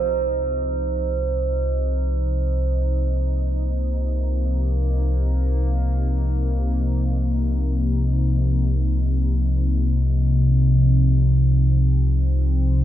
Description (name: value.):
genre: dark ambient drone.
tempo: free time.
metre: none.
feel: none.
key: C minor.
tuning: A4 = 440 Hz.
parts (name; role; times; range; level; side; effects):
sweeping resonant pad; sustained chords; 0.0-12.8 s; C3 to Eb4; -28 LUFS; left 1 dB; chorus.
deep rumbling drone; drone; 0.0-12.8 s; C2 to C3; -19 LUFS; left 1 dB; built-in reverb.
bronze singing bowl; texture; 0.0-12.8 s; C5; -28 LUFS; right 8 dB; none.
room: moderate cathedral reverb, RT60 5.2 s.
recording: dark, warm production.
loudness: -18 LUFS.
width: side -12 dB against mid.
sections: 0.0-12.8 A section.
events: fade-in on analog synth pad 0.0-12.8; filter sweep on synth drone 0.0-12.8.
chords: 0.0 Cm.